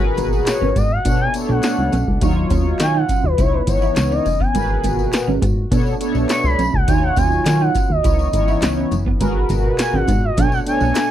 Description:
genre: early-eighties boogie funk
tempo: 103 BPM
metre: 4/4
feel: straight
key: G# minor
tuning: A4 = 436 Hz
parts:
  - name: gliding portamento lead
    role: melody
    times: 0.0-11.1 s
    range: B4 to C#6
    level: -21 LUFS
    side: equal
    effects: chorus, phaser
  - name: mellow synth brass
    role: accompaniment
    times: 0.0-11.1 s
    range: E#3 to C#5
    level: -22 LUFS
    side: left 1 dB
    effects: chorus, phaser
  - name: chorused pulse-width pad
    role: sustained chords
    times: 0.0-11.1 s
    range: A#2 to F#4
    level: -27 LUFS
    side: left 1 dB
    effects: none
  - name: electric guitar at the edge of break-up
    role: riff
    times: 0.0-10.9 s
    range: G#3 to E4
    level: -26 LUFS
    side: right 7 dB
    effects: ensemble chorus
  - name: plucky analog bass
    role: bass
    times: 0.0-10.9 s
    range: F#1 to D#3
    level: -19 LUFS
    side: equal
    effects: none
  - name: electro analog drum machine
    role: drums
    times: 0.2-11.1 s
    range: handclaps, hi-hat, kick drum, snare drum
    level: -21 LUFS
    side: equal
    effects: none
  - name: tambourine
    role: percussion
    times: 0.2-11.1 s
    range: none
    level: -37 LUFS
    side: left 10 dB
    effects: none
room: little or no reverb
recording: dry, close 1970s-style studio recording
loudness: -15 LUFS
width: side -11 dB against mid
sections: 0.0-11.1 A section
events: soft synth lead solo 0.0-11.1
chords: 0.0 G#m9; 1.1 Bm9; 2.2 D#m9; 3.4 C#m9; 4.5 G#m9; 5.7 Bm9; 6.9 D#m9; 8.0 C#m9; 9.2 G#m9; 10.4 Bm9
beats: 0.47 1.05 1.64 | 2.22 2.80 3.38 3.97 | 4.55 5.13 5.71 6.30 | 6.88 7.46 8.04 8.63 | 9.21 9.79 10.37 10.96

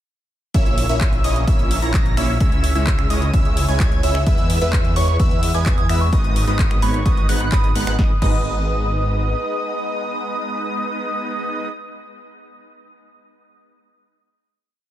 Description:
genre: EDM, festival progressive house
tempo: 129 BPM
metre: 4/4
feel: straight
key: G# minor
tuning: A4 = 440 Hz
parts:
  - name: wide unison lead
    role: arpeggios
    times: 0.5-11.7 s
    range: C#6 to A#6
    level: -27 LUFS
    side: right 1 dB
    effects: sidechain pumping, dub echo
  - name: supersaw stab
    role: riff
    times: 0.5-11.7 s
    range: G#3 to A#5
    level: -24 LUFS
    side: right 1 dB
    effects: phaser, sidechain pumping, dub echo
  - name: detuned saw bass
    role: bass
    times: 0.5-9.3 s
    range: G#1 to E2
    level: -21 LUFS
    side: equal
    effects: sidechain pumping
  - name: electronic kick drum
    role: drums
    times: 0.5-8.4 s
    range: none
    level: -18 LUFS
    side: equal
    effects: studio reverb
  - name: house drum kit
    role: drums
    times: 0.5-8.4 s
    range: crash cymbal, finger snaps, handclaps, hi-hat, snare drum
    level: -29 LUFS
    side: left 1 dB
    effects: studio reverb
  - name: soft synth bell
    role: melody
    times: 5.0-7.6 s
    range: B5 to D#6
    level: -29 LUFS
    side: right 3 dB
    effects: chorus, phaser, dub echo
room: little or no reverb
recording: none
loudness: -16 LUFS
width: side -12 dB against mid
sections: 0.5-8.0 drop; 8.0-11.7 final chord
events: drop 0.5-8.0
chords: 0.5 A#dim; 2.4 C#m; 4.3 E; 6.1 G#m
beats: | 0.54 1.01 1.48 1.94 | 2.40 2.87 3.33 3.80 | 4.26 4.73 5.20 5.66 | 6.13 6.59 7.06 7.52 | 7.99 8.45 8.92 9.38 | 9.85 10.31 10.78 11.24

